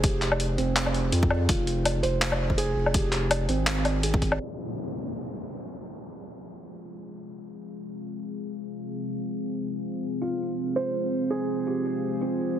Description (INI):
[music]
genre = half-time drum and bass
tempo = 165 BPM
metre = 4/4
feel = swing 56% on 16ths, half-time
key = F minor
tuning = A4 = 439 Hz
[part]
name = felt-muted upright piano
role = arpeggios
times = 0.0-4.4, 10.2-12.6 s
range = C4 to F5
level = -31 LUFS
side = right 3 dB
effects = ping-pong delay
[part]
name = saturated sub bass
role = bass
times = 0.0-4.4 s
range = F1 to F2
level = -27 LUFS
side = equal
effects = none
[part]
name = boom bap sampler-style drum kit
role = drums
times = 0.0-4.4 s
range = handclaps, hi-hat, woodblock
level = -28 LUFS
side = left 1 dB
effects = none
[part]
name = electronic kick drum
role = drums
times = 0.0-4.3 s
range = none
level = -25 LUFS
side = equal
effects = none
[part]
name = deep dark ambient pad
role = sustained chords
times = 6.5-12.6 s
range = C4 to F5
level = -30 LUFS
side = left 1 dB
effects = chorus, built-in reverb, sidechain pumping
[part]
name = downlifter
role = sound effects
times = 4.4-7.3 s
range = none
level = -38 LUFS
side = left 1 dB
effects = none
[sound]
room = light reverb, digital ambience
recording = heavily compressed radio sound, low-pass filter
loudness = -25 LUFS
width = side -10 dB against mid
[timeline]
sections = 0.0-4.4 A section; 4.4-12.6 B section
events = filter sweep on ambient pad 4.4-12.6; filter sweep 4.4-12.6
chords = 0.0 Fm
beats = | 0.04 0.40 0.76 1.13 | 1.49 1.85 2.22 2.58 | 2.94 3.31 3.67 4.04 | 4.40 4.76 5.13 5.49 | 5.85 6.22 6.58 6.94 | 7.31 7.67 8.04 8.40 | 8.76 9.13 9.49 9.85 | 10.22 10.58 10.94 11.31 | 11.67 12.04 12.40